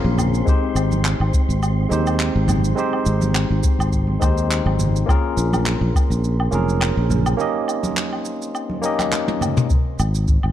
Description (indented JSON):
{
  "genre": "sunset chillout",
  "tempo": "104 BPM",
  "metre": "4/4",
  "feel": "swing 54% on 16ths",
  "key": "Ab major",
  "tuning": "A4 = 440 Hz",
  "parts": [
    { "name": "barky tine electric piano", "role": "accompaniment", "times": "0.0-9.7 s", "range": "Ab3 to Eb5", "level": "-24 LUFS", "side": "moving between left 8 dB and right 6 dB", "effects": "auto-pan, digital delay" },
    { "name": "sustaining fretless electric bass", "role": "bass", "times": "0.0-10.5 s", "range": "F1 to Eb2", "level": "-19 LUFS", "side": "equal", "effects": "none" },
    { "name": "congas", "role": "percussion", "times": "0.0-9.5 s", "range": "none", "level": "-28 LUFS", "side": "right 2 dB", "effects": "none" },
    { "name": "wind-like tuned noise texture", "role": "texture", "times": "0.0-9.7 s", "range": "C4 to C6", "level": "-31 LUFS", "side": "left 1 dB", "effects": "built-in reverb" },
    { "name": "jazz brush drum kit", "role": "drums", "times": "0.2-10.5 s", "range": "handclaps, shaker, toms, woodblock", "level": "-25 LUFS", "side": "equal", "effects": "none" },
    { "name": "electronic kick drum", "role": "drums", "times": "0.5-6.1, 9.7-10.4 s", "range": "none", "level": "-18 LUFS", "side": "equal", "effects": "none" }
  ],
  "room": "light reverb",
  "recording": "dark, warm production",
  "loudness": "-17 LUFS",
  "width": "side -11 dB against mid",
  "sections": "0.0-9.7 A section",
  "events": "break 7.4-9.7; drum fill 9.1-9.7",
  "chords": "0.5 Abmaj7; 5.1 Bbm7; 7.4 Eb7; 9.7 Ab5",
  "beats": "| 0.47 1.05 1.63 2.20 | 2.78 3.36 3.94 4.51 | 5.09 5.67 6.24 6.82 | 7.40 7.97 8.55 9.13 | 9.70 10.28"
}